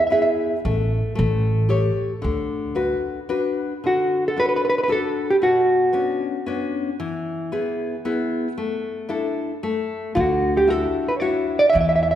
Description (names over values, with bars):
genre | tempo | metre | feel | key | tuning
italian folk, Italian serenade | 114 BPM | 3/4 | swing 53% on 8ths | D major | A4 = 439 Hz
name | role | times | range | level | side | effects
hollow-body jazz guitar | melody | 0.0-0.3, 3.9-6.7, 10.2-12.2 s | F#4 to E5 | -18 LUFS | right 1 dB | none
nylon-string guitar | accompaniment | 0.1-12.2 s | B2 to C#5 | -24 LUFS | left 3 dB | none
upright bass | bass | 0.6-2.9, 10.2-12.2 s | A1 to E2 | -23 LUFS | equal | none
room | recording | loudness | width
moderate concert hall reverb, RT60 2.2 s | recorded in a church or concert hall | -19 LUFS | side -11 dB against mid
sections
0.0-3.8 A section; 3.8-12.2 A section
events
none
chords
0.0 E; 0.7 N.C.; 1.2 A7; 2.2 D6; 3.8 D; 5.4 Bmadd9; 7.0 E; 8.6 Asus4; 9.6 N.C.; 10.2 Dadd9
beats
0.12 | 0.65 1.18 1.70 | 2.23 2.76 3.30 | 3.83 4.37 4.89 | 5.42 5.95 6.47 | 7.00 7.52 8.05 | 8.57 9.10 9.63 | 10.16 10.69 11.21 | 11.74